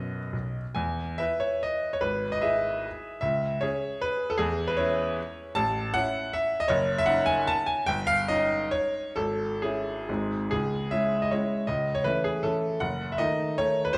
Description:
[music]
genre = classical, romantic triple-time dance for piano with dotted rhythms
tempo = 122-169 BPM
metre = 3/4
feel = rubato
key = E major, C# minor from 5.6 s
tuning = A4 = 440 Hz
[part]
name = bright baby grand piano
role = solo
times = 0.0-14.0 s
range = F#1 to A5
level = -28 LUFS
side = equal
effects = none
[sound]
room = wet recital hall reverb, RT60 1.7 s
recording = recorded in a church or concert hall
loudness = -28 LUFS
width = mono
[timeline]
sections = 0.8-10.5 A section; 10.5-14.0 B section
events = none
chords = 0.0 B; 0.8 E; 2.0 E/G#; 3.2 C#m; 4.4 C#m/E; 5.6 A; 6.7 F#m13; 7.9 D#7/G; 9.1 C#m/G#; 10.1 G#; 10.5 C#m; 11.7 A/C#; 12.8 D#dim/F#

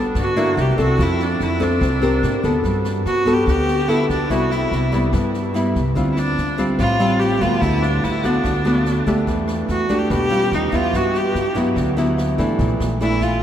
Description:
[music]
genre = bossa nova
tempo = 145 BPM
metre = 4/4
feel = straight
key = G major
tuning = A4 = 439 Hz
[part]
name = nylon-string guitar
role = accompaniment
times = 0.0-13.4 s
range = G2 to Bb4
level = -20 LUFS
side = equal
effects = none
[part]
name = upright bass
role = bass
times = 0.0-13.4 s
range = G1 to Ab2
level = -23 LUFS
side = equal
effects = none
[part]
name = swinging big-band drum kit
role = drums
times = 0.1-13.3 s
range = kick drum, rim click, snare drum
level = -30 LUFS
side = equal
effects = none
[part]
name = bright viola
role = melody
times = 0.2-13.4 s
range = D4 to G4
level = -22 LUFS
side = right 1 dB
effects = none
[sound]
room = wet cathedral reverb, RT60 7.1 s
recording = in a vast, echoing space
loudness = -16 LUFS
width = side -10 dB against mid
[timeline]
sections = 0.0-12.6 A section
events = none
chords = 0.0 Gmaj9; 0.6 C9; 1.0 F6; 2.2 Abmaj9; 2.6 Gmaj9; 4.3 Cmaj7; 6.0 Dm7; 7.6 Gmaj9/D; 9.3 Em7; 10.5 Eb9; 10.9 Gmaj13; 12.6 Bbmaj7#11

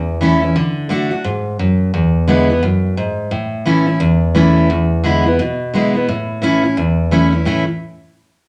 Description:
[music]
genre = rock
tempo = 174 BPM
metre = 4/4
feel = swing 62% on 8ths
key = A major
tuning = A4 = 440 Hz
[part]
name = picked steel-string acoustic guitar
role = solo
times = 0.0-7.6 s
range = E2 to F#4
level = -16 LUFS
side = equal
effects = none
[sound]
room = wet large studio reverb, RT60 0.8 s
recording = none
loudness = -15 LUFS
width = mono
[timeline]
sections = 0.0-4.7 A section; 4.7-7.5 B section; 7.5-8.5 C section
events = none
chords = 0.0 A; 0.6 D; 1.9 E7; 3.3 A; 4.7 E7; 6.1 A

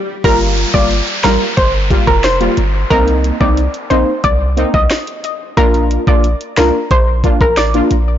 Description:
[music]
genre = dancehall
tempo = 90 BPM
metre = 4/4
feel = straight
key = G minor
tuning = A4 = 439 Hz
[part]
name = swell and downlifter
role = sound effects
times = 0.0-5.6 s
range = none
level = -23 LUFS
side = equal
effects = none
[part]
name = analog pluck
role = melody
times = 0.2-8.0 s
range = Bb4 to Eb5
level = -16 LUFS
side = equal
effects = chorus, ping-pong delay
[part]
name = synth brass stab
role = accompaniment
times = 0.2-7.9 s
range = G3 to F4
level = -18 LUFS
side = left 1 dB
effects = chorus
[part]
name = warm 808-style bass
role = bass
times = 0.2-8.2 s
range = F1 to C2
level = -16 LUFS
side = equal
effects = none
[part]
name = island pop drum kit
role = drums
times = 0.2-8.1 s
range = hi-hat, kick drum, rim click, snare drum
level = -16 LUFS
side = equal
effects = none
[sound]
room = light reverb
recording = blown-out, overdriven recording, overdrive, nothing above 7.5 kHz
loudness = -11 LUFS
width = side -10 dB against mid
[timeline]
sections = 0.2-8.2 A section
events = swell 0.0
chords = 0.2 Gm7; 2.9 Cm7; 5.6 Bb

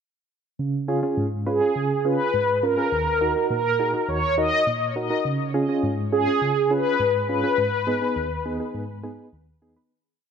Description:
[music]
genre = pop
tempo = 103 BPM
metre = 4/4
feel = straight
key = Db mixolydian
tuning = A4 = 440 Hz
[part]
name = soft electric-piano-like synth keys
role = accompaniment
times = 0.6-9.9 s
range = Eb2 to Cb5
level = -25 LUFS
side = right 1 dB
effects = chorus, tremolo
[part]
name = mellow synth brass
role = melody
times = 1.5-9.3 s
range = Ab4 to Eb5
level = -22 LUFS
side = equal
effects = chorus, ping-pong delay
[sound]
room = moderate lush hall reverb, RT60 1.7 s, digital ambience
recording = none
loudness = -20 LUFS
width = side -7 dB against mid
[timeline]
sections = 0.6-9.9 verse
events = fade-out 7.6-9.9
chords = 0.6 Db; 2.9 Ebm; 5.2 Db; 7.6 Abm

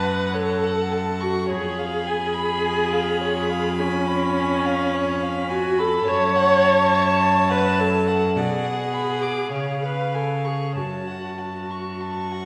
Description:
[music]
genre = classical, slow romantic movement for string quartet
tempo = 48-54 BPM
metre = 4/4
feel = rubato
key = F# minor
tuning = A4 = 442 Hz
[part]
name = rich violin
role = melody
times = 0.0-12.5 s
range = E#5 to C#6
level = -31 LUFS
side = equal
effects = none
[part]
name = dark violin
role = second line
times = 0.0-12.5 s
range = C#5 to D6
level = -31 LUFS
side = equal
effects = none
[part]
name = dark viola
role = accompaniment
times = 0.0-12.5 s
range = C#4 to C#5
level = -25 LUFS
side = equal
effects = none
[part]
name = rich cello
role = bass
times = 0.0-12.5 s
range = E#2 to C#3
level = -29 LUFS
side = equal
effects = none
[sound]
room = wet scoring stage reverb, RT60 1.5 s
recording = heard from further back in the room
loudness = -22 LUFS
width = mono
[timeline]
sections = 0.0-12.5 A section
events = none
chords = 0.0 F#m; 1.5 C#7/E#; 6.1 F#m; 8.4 Bm; 9.5 C#; 10.8 F#m

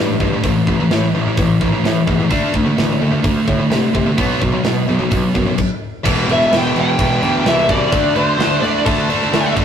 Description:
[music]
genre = heavy metal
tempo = 128 BPM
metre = 4/4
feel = straight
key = E minor from 6.1 s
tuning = A4 = 440 Hz
[part]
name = heavy high-gain guitar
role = riff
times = 0.0-9.6 s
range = E2 to D4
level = -18 LUFS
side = left 3 dB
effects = distortion
[part]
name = scooped high-gain guitar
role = riff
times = 0.0-9.6 s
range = E2 to D4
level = -21 LUFS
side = right 4 dB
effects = distortion
[part]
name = fuzz picked electric bass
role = bass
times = 0.0-9.6 s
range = E1 to C3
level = -21 LUFS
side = equal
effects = overdrive
[part]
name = tight metal drum kit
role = drums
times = 0.2-9.6 s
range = crash cymbal, hi-hat, kick drum, snare drum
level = -20 LUFS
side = equal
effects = none
[part]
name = high-gain lead guitar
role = melody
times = 6.3-9.5 s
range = C5 to A5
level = -17 LUFS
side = equal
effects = distortion
[sound]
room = moderate booth ambience, RT60 0.2 s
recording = rough rehearsal-room recording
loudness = -13 LUFS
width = side -8 dB against mid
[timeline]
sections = 0.0-6.1 A section; 6.1-9.6 B section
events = stop 5.6-6.1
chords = 0.0 A5; 2.3 D5; 4.2 B5; 6.1 Em; 7.9 D5

